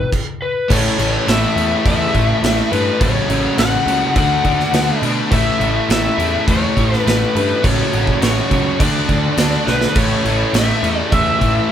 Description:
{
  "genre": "hard rock",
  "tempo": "104 BPM",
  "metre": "4/4",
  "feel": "straight",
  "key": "A major",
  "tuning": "A4 = 440 Hz",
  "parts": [
    { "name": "lead guitar through a small cranked amp", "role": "melody", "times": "0.0-11.7 s", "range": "B4 to F#5", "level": "-20 LUFS", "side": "left 2 dB", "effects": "overdrive" },
    { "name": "overdriven semi-hollow guitar", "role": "riff", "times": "0.0-11.7 s", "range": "F#2 to D4", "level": "-22 LUFS", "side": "left 5 dB", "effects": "none" },
    { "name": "overdriven semi-hollow guitar", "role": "riff", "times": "0.0-11.7 s", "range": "F#2 to D4", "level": "-24 LUFS", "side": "right 8 dB", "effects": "none" },
    { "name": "big rock drum kit", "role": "drums", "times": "0.1-11.5 s", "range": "crash cymbal, kick drum, snare drum", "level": "-19 LUFS", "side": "equal", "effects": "none" },
    { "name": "high-gain distorted guitar", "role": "riff", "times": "0.7-11.7 s", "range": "D3 to A4", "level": "-24 LUFS", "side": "right 1 dB", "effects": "distortion" },
    { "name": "fuzz picked electric bass", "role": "bass", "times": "0.7-11.6 s", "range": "A1 to B2", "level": "-20 LUFS", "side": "right 1 dB", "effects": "overdrive" }
  ],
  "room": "moderate studio ambience, RT60 0.5 s",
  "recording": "band playing live in one room",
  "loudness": "-13 LUFS",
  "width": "side -9 dB against mid",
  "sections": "0.7-11.7 A section",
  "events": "stop 0.1-0.7; drum fill 9.7",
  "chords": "0.0 E5; 0.7 A; 3.0 F#m/A; 4.2 D; 5.3 A; 7.6 F#m/A; 8.8 D; 10.0 A",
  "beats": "0.11 | 0.69 1.27 1.85 2.42 | 3.00 3.58 4.16 4.74 | 5.32 5.89 6.47 7.05 | 7.63 8.21 8.79 9.38 | 9.96 10.54 11.12 11.70"
}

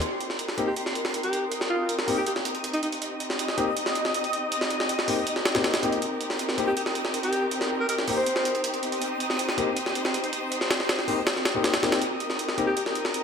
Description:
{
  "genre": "drum and bass, jungle",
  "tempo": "160 BPM",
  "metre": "4/4",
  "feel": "straight",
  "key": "C minor",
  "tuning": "A4 = 439 Hz",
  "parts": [
    { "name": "dark studio string section", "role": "sustained chords", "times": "0.0-13.2 s", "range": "C4 to Eb5", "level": "-31 LUFS", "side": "equal", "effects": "low-pass filter" },
    { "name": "jungle sampler-style drum kit", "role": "drums", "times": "0.0-13.2 s", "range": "hi-hat, snare drum", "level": "-28 LUFS", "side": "equal", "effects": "high-pass filter on kick, high-pass filter on hats, high-pass filter on snare, high-pass filter on room" },
    { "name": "backwards swelling texture", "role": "texture", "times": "0.0-13.2 s", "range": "Bb5 to Eb6", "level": "-34 LUFS", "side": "equal", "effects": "built-in reverb" },
    { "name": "warm concert grand piano", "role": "stabs", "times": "0.6-12.7 s", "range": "Bb3 to G4", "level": "-30 LUFS", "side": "left 4 dB", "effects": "low-pass filter, dub echo" },
    { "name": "breathy alto saxophone", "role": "melody", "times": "0.7-2.9, 6.7-8.7, 12.7-12.8 s", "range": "Eb4 to C5", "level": "-30 LUFS", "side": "equal", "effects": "dub echo" }
  ],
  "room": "moderate lush hall reverb, RT60 1.9 s, small room ambience",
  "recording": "none",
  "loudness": "-24 LUFS",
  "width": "side -6 dB against mid",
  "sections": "0.0-13.2 A section",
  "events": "filter sweep on string section 0.0-13.2",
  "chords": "0.0 Cm7",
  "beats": "| 0.02 0.39 0.77 1.14 | 1.52 1.89 2.27 2.64 | 3.02 3.39 3.77 4.14 | 4.52 4.89 5.27 5.64 | 6.02 6.39 6.77 7.14 | 7.52 7.89 8.27 8.64 | 9.02 9.39 9.77 10.14 | 10.52 10.89 11.27 11.64 | 12.02 12.39 12.77 13.14"
}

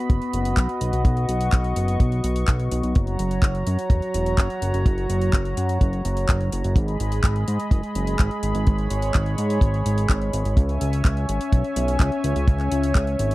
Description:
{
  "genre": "italo disco",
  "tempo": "126 BPM",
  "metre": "4/4",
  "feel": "straight",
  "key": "B major",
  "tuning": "A4 = 441 Hz",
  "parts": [
    { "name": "warm analog pad", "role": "sustained chords", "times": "0.0-13.3 s", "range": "F#3 to C#6", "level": "-26 LUFS", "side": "equal", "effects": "chorus" },
    { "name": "fat analog bass", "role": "bass", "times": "0.1-13.3 s", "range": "E1 to G#2", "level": "-23 LUFS", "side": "equal", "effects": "tube saturation" },
    { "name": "house drum kit", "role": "drums", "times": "0.1-13.3 s", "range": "handclaps, hi-hat", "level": "-31 LUFS", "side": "left 1 dB", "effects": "none" },
    { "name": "kick drum", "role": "drums", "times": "0.1-13.0 s", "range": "none", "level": "-18 LUFS", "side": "equal", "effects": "none" }
  ],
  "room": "little or no reverb",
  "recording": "dry, close 1970s-style studio recording",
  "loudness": "-19 LUFS",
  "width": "side -18 dB against mid",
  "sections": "0.0-13.3 A section",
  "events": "none",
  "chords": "0.0 B; 3.0 F#; 6.8 G#m; 10.6 C#m",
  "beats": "0.10 0.57 | 1.05 1.52 2.00 2.48 | 2.95 3.43 3.91 4.38 | 4.86 5.33 5.81 6.29 | 6.76 7.24 7.72 8.19 | 8.67 9.14 9.62 10.10 | 10.57 11.05 11.53 12.00 | 12.48 12.95"
}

